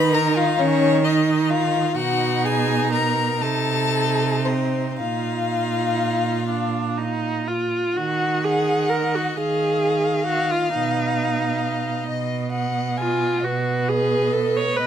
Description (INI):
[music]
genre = classical, slow romantic movement for string quartet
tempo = 37-46 BPM (dotted quarters)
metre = 6/8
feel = rubato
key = Eb minor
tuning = A4 = 441 Hz
[part]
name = clear violin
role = melody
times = 0.0-14.9 s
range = C5 to B5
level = -26 LUFS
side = left 8 dB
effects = none
[part]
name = warm violin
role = second line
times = 0.0-14.9 s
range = C4 to G#5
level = -25 LUFS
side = left 3 dB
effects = none
[part]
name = rich viola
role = accompaniment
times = 0.0-14.9 s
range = D4 to Db5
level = -24 LUFS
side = right 2 dB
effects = none
[part]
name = rich cello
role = bass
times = 0.0-14.9 s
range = Bb2 to D#3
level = -24 LUFS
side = right 5 dB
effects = none
[sound]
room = light reverb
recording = close, detailed microphones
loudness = -19 LUFS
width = side -9 dB against mid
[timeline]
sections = 0.0-8.0 A section; 8.0-14.9 B section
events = none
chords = 0.0 Bmaj9#11/D# (rootless); 2.0 B; 3.4 Cm6; 5.0 Bbsus4; 6.5 Bb5; 8.0 Ebm; 10.7 B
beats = 0.60 | 1.96 3.40 | 4.98 6.49 | 7.96 9.37 | 10.73 12.07 | 13.44 14.78